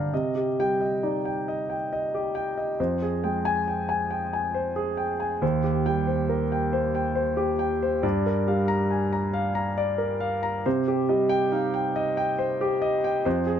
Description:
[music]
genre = neoclassical minimalist piano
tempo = 46 BPM (dotted quarters)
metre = 6/8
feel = rubato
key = C minor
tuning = A4 = 440 Hz
[part]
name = warm concert grand piano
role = solo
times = 0.0-13.6 s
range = Eb2 to Bb6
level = -23 LUFS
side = equal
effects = none
[sound]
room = light reverb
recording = none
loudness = -23 LUFS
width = side -9 dB against mid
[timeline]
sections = 0.1-13.6 A section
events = none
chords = 0.1 Cm; 2.8 Fmadd9; 5.4 Cm/Eb; 8.0 Gm7; 10.7 Cm

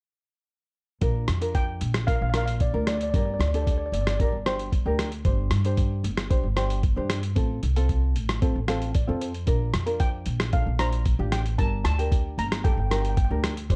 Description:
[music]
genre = calypso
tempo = 114 BPM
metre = 4/4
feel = straight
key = Bb major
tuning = A4 = 440 Hz
[part]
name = ukulele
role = accompaniment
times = 1.0-13.8 s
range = C4 to F5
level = -33 LUFS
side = equal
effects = none
[part]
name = upright bass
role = bass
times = 1.0-13.8 s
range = G1 to G2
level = -29 LUFS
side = equal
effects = none
[part]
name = lo-fi sampler-style drum kit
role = drums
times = 1.0-13.8 s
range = hi-hat, kick drum, rim click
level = -28 LUFS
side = equal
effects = none
[part]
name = steel pan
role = melody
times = 1.5-4.3, 10.0-13.3 s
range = D5 to Bb5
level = -34 LUFS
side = equal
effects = slapback echo
[sound]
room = light reverb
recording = dark, warm production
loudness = -25 LUFS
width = mono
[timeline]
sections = 1.0-13.8 A section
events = ukulele fill 8.4-9.5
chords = 1.0 Bb; 3.1 Gmadd9; 5.3 Csus2/G; 7.4 F/A; 9.5 Bb; 11.6 Gmadd9

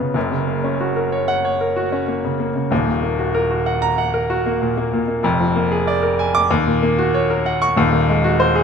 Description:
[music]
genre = classical, virtuoso piano study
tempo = 94 BPM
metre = 4/4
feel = rubato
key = unclear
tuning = A4 = 438 Hz
[part]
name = clear baby grand piano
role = solo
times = 0.0-8.6 s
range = D#1 to D6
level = -16 LUFS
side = equal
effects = none
[sound]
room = moderate recital hall reverb, RT60 1.4 s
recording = close, detailed microphones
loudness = -16 LUFS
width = side -6 dB against mid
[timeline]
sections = 0.0-8.6 A section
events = none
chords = 0.2 F#; 2.7 D#m; 5.2 A#7/E#; 6.5 D#m7; 7.8 G#7/D#

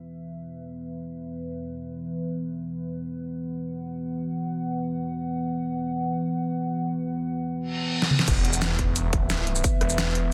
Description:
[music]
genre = dark technical drum and bass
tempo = free time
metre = none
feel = none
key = unclear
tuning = A4 = 445 Hz
[part]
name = dark analog pad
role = sustained chords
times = 0.0-10.3 s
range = E3 to F#5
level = -32 LUFS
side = equal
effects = chorus, phaser, sidechain pumping
[part]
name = reverse cymbal and impact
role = sound effects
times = 7.7-9.6 s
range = none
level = -35 LUFS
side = equal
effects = none
[part]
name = dubstep drum kit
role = drums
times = 8.0-10.2 s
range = crash cymbal, hi-hat, rim click, shaker, snare drum, toms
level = -28 LUFS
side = equal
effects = overdrive, low-pass filter on hats, low-pass filter on cymbals, low-pass filter on perc, low-pass filter on snare, low-pass filter on toms, low-pass filter on room
[part]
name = snarling distorted saw bass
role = bass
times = 8.3-10.3 s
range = E1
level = -29 LUFS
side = equal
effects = distortion, tube saturation
[part]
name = electronic kick drum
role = drums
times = 8.3-9.7 s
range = none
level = -28 LUFS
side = equal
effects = overdrive
[sound]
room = moderate lush hall reverb, RT60 1.9 s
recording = dense, heavily limited modern master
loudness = -28 LUFS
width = mono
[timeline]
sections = 0.0-8.3 A section; 8.3-10.3 B section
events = filter sweep on analog synth pad 0.0-8.3; reverse cymbal 7.7-8.3; drum fill 8.0; drop 8.3-10.3; impact 8.3-9.6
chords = 0.0 E5

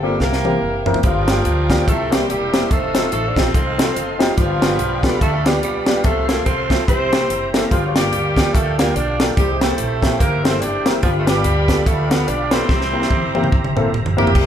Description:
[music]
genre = uptempo gospel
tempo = 144 BPM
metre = 4/4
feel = swing 58% on 8ths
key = unclear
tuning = A4 = 443 Hz
[part]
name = dark horn section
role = melody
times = 0.0-14.5 s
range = Bb3 to D5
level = -24 LUFS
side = left 1 dB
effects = none
[part]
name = growling tenor saxophone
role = melody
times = 0.0-13.9 s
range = F3 to D4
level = -24 LUFS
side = right 4 dB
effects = none
[part]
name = warm upright piano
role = accompaniment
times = 0.0-14.5 s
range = G2 to Bb4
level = -22 LUFS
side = left 2 dB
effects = none
[part]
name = dark symphonic string section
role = sustained chords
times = 0.0-14.3 s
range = C5 to C6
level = -32 LUFS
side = left 1 dB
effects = none
[part]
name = upright bass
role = bass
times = 0.0-14.5 s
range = E1 to D2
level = -23 LUFS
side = equal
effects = none
[part]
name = tight funk drum kit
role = drums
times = 0.2-14.5 s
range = crash cymbal, hi-hat, kick drum, snare drum, toms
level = -19 LUFS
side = equal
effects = none
[part]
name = tonewheel organ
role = sustained chords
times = 1.0-14.5 s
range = G4 to D6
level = -29 LUFS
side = right 2 dB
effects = fast rotary speaker, chorus vibrato
[sound]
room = moderate large studio reverb, RT60 0.9 s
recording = band playing live in one room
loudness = -15 LUFS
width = side -9 dB against mid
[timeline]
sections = 0.0-14.3 A section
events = drum fill 0.2-1.0, 12.7-14.3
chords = 0.2 C7; 1.0 Gm7; 1.9 C7; 2.7 F7; 4.4 G7; 6.0 F/C; 6.9 C7; 7.7 Gm7; 9.4 C7; 11.0 G7; 12.7 C7

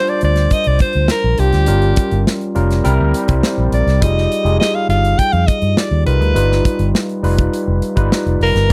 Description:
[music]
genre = polished 1980s jazz-funk pop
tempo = 103 BPM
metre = 4/4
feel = straight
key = unclear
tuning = A4 = 440 Hz
[part]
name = edgy alto saxophone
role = melody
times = 0.0-8.7 s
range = G4 to G5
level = -20 LUFS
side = equal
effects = slapback echo
[part]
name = overdriven tine electric piano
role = accompaniment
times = 0.0-8.7 s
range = G3 to C5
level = -22 LUFS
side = equal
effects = analog chorus
[part]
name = modern studio drum kit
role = drums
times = 0.1-8.7 s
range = hi-hat, kick drum, snare drum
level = -20 LUFS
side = equal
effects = none
[part]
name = vintage muted fingered electric bass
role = bass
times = 0.2-8.7 s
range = F1 to G2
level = -18 LUFS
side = equal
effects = none
[sound]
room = little or no reverb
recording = dry, close 1970s-style studio recording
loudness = -15 LUFS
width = mono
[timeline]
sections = 0.0-8.7 A section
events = none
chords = 0.0 Ebmaj13 (rootless); 1.7 Gm7b5; 2.9 C7; 4.0 Fm9; 6.4 G7b13

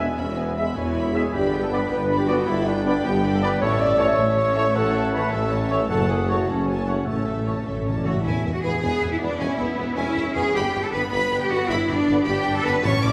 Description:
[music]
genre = cinematic, heroic adventure film score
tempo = 104 BPM (dotted quarters)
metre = 6/8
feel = straight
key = unclear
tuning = A4 = 440 Hz
[part]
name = warm studio violin section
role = melody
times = 0.0-13.1 s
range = B4 to B5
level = -38 LUFS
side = equal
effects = none
[part]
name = clear clarinet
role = second line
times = 0.0-8.0 s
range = A3 to D5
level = -33 LUFS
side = equal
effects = none
[part]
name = dark cor anglais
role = second line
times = 0.0-8.1 s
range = B4 to A5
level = -34 LUFS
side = equal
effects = none
[part]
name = mellow flute section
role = second line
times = 0.0-8.0 s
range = A4 to D6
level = -36 LUFS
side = equal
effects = none
[part]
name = rich studio violin section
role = second line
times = 0.0-13.1 s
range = A4 to D6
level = -36 LUFS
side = equal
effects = none
[part]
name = clear symphonic viola section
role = accompaniment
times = 0.0-13.1 s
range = F#3 to E4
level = -35 LUFS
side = equal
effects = none
[part]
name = mellow French horn section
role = sustained chords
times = 0.0-8.0 s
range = A3 to D5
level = -29 LUFS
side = equal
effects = none
[part]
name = mellow trombone section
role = sustained chords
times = 0.0-13.1 s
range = B2 to B3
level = -34 LUFS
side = equal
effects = none
[part]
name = dark trumpet section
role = stabs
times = 0.0-8.1 s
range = C#5 to E5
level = -34 LUFS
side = equal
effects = none
[part]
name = rich studio cello section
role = bass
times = 0.0-13.1 s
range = E2 to D5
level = -28 LUFS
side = equal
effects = none
[part]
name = rich symphonic double bass section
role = bass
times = 0.0-13.1 s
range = E1 to E2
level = -33 LUFS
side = equal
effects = none
[part]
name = warm tuba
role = bass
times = 0.0-13.1 s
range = E1 to A1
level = -31 LUFS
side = equal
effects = none
[part]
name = timpani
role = percussion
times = 7.1-8.2, 12.9-13.1 s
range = A2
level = -31 LUFS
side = equal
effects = none
[sound]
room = wet scoring stage reverb, RT60 1.8 s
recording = heard from further back in the room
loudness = -22 LUFS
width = mono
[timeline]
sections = 0.0-8.2 A section; 8.2-13.1 B section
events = timpani fill 7.1-8.2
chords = 0.0 E; 1.3 G; 3.6 A; 5.9 F#m; 7.1 A; 8.2 E; 10.6 G

